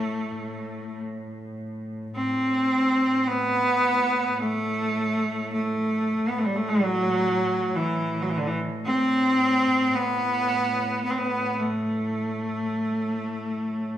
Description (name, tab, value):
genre	caucasian folk, Caucasian lament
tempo	54 BPM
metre	3/4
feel	uneven beats, rubato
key	A dorian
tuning	A4 = 440 Hz
part	bright cello	melody	0.0-14.0 s	D3 to C4	-23 LUFS	equal	none
part	rich chamber cello section	drone	0.0-14.0 s	A2	-33 LUFS	equal	none
room	wet recital hall reverb, RT60 1.5 s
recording	recorded in a church or concert hall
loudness	-22 LUFS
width	side -11 dB against mid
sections	0.0-2.2 A section; 2.2-14.0 B section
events	none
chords	none